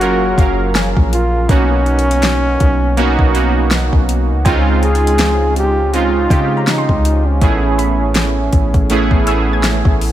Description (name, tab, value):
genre	contemporary R&B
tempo	81 BPM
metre	4/4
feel	swing 58% on 16ths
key	unclear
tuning	A4 = 440 Hz
part	mellow trombone	melody	0.0-9.6 s	C#4 to G#4	-19 LUFS	equal	ping-pong delay
part	warm analog keys	accompaniment	0.0-10.1 s	F#3 to E#5	-17 LUFS	right 3 dB	chorus
part	warm 808-style bass	bass	0.0-10.1 s	F#1 to C#3	-16 LUFS	equal	none
part	smooth R&B drum kit	drums	0.0-10.1 s	hi-hat, kick drum, snare drum	-15 LUFS	equal	none
part	glassy wavetable pluck	texture	0.0-10.1 s	G5 to G#6	-27 LUFS	equal	chorus, ping-pong delay
room	digital ambience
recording	none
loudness	-11 LUFS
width	side -12 dB against mid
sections	0.0-10.1 A section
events	none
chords	0.0 F#maj9; 1.5 Bmaj9; 4.5 C#maj9; 7.4 Amaj9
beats	0.01 0.75 | 1.49 2.23 2.97 3.71 | 4.45 5.19 5.93 6.68 | 7.42 8.16 8.90 9.64